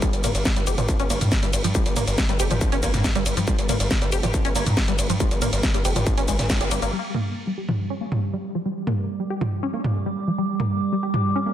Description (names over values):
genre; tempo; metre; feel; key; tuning
driving peak-time techno; 139 BPM; 4/4; straight; G minor; A4 = 440 Hz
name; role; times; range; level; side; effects
tight sequenced synth; riff; 0.0-11.5 s; F3 to G4; -28 LUFS; left 1 dB; chorus, phaser, sidechain pumping, ping-pong delay
electronic kick drum; drums; 0.0-6.6 s; none; -24 LUFS; equal; distortion
techno drum kit; drums; 0.0-11.2 s; hi-hat, ride cymbal, shaker, snare drum, toms; -25 LUFS; equal; none
gritty driven synth bass; bass; 0.1-6.9 s; F1 to G2; -26 LUFS; equal; distortion, sidechain pumping
warbly tape-like pad; texture; 6.9-11.5 s; G3 to D6; -27 LUFS; right 3 dB; chorus, built-in reverb, sidechain pumping
room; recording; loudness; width
light reverb, digital ambience; dense, heavily limited modern master; -20 LUFS; side -11 dB against mid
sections
0.0-6.9 A section; 6.9-11.5 B section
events
drop 0.0-6.9; band accent 6.5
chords
0.0 Fsus2; 6.9 G5